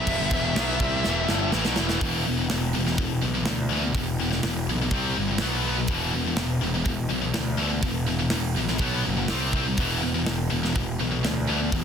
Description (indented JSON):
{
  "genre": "heavy metal",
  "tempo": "124 BPM",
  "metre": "4/4",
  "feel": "straight",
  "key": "E minor",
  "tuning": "A4 = 440 Hz",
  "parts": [
    { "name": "high-gain lead guitar", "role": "melody", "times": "0.0-1.5 s", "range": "E5", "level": "-29 LUFS", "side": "equal", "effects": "distortion, digital delay" },
    { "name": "distorted electric guitar", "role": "riff", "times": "0.0-2.0 s", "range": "E2 to C4", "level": "-34 LUFS", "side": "equal", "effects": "distortion" },
    { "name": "heavy high-gain guitar", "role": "riff", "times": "0.0-11.8 s", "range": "E2 to C4", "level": "-28 LUFS", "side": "left 11 dB", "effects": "distortion" },
    { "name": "scooped high-gain guitar", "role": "riff", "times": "0.0-11.8 s", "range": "E2 to C4", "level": "-30 LUFS", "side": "right 11 dB", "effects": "distortion" },
    { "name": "fuzz picked electric bass", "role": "bass", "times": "0.0-11.8 s", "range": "E1 to D2", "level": "-28 LUFS", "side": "equal", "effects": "overdrive" },
    { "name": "tight metal drum kit", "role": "drums", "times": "0.1-11.8 s", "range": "crash cymbal, hi-hat, kick drum, snare drum", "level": "-29 LUFS", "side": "right 1 dB", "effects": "none" }
  ],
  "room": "small room ambience",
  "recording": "dense, heavily limited modern master",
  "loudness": "-22 LUFS",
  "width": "side -7 dB against mid",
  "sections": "0.0-2.0 A section; 2.0-11.8 B section",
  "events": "drum fill 1.0-2.0",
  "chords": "0.0 Em; 2.0 E5; 4.9 C5; 5.4 B5; 5.9 E5; 8.8 B5; 9.3 C5; 9.8 E5",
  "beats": "| 0.08 0.56 1.05 1.53 | 2.02 2.50 2.99 3.47 | 3.96 4.44 4.93 5.42 | 5.90 6.39 6.87 7.36 | 7.84 8.33 8.81 9.30 | 9.78 10.27 10.76 11.24 | 11.72"
}